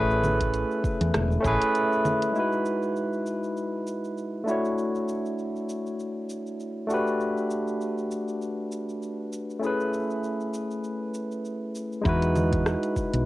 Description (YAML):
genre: sunset chillout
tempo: 99 BPM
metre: 4/4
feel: swing 56% on 16ths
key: E major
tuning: A4 = 440 Hz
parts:
  - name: barky tine electric piano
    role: accompaniment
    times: 0.0-13.3 s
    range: G#3 to C#5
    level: -26 LUFS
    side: equal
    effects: auto-pan, tape echo, plate reverb
  - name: woody fretless electric bass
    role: bass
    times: 0.0-1.6, 12.1-13.2 s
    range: E1 to E2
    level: -26 LUFS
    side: equal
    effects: tube saturation
  - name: smooth R&B drum kit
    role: drums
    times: 0.1-13.2 s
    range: congas, hi-hat, rim click, shaker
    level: -32 LUFS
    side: right 1 dB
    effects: cassette tape
  - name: electronic kick drum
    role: drums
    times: 0.4-1.6, 12.1-13.1 s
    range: none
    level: -29 LUFS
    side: equal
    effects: cassette tape
room: wet small room ambience, RT60 0.5 s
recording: home recording on cassette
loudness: -25 LUFS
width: side -17 dB against mid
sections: 0.0-2.4 A section; 2.4-12.1 B section; 12.1-13.3 C section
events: filter sweep on tine electric piano 0.0-2.4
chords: 0.0 Amaj9; 2.4 Emaj9; 4.5 Dmaj9; 6.9 Gmaj9; 9.6 Amaj9; 12.1 Emaj9